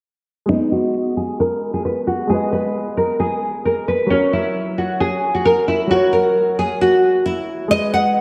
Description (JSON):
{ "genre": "hip hop", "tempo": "133 BPM", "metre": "4/4", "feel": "half-time", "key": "G# minor", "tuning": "A4 = 440 Hz", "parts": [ { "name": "nylon-string guitar", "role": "melody", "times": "0.5-8.2 s", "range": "C#4 to F#5", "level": "-19 LUFS", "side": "equal", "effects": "lush chorus, low-pass filter" }, { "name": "dark concert grand piano", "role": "accompaniment", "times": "0.5-8.2 s", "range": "F#3 to D#5", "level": "-25 LUFS", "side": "equal", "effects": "lush chorus, low-pass filter" } ], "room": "wet lush hall reverb, RT60 2.3 s", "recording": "dreamy mix soaked in reverb", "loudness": "-18 LUFS", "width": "mono", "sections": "0.5-7.7 A section", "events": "filter sweep 0.5-7.7", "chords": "0.5 G#m; 4.1 F#" }